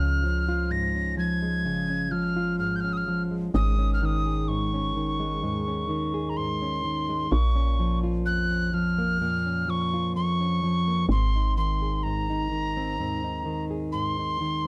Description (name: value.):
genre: acoustic folk duo or small band.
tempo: 64 BPM.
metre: 4/4.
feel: straight.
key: unclear.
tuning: A4 = 441 Hz.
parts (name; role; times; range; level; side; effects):
mellow tin whistle; melody; 0.0-14.7 s; Bb5 to Bb6; -32 LUFS; equal; slapback echo.
nylon-string guitar; accompaniment; 0.0-14.7 s; F2 to Ab4; -30 LUFS; equal; none.
woody FM bass; bass; 0.0-14.7 s; Ab1 to F2; -32 LUFS; equal; none.
room: light reverb.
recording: dark, warm production.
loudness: -26 LUFS.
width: mono.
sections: 0.0-14.7 A section.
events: none.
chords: 0.0 Db; 3.5 Absus4; 7.3 Bbm; 11.1 Abadd9.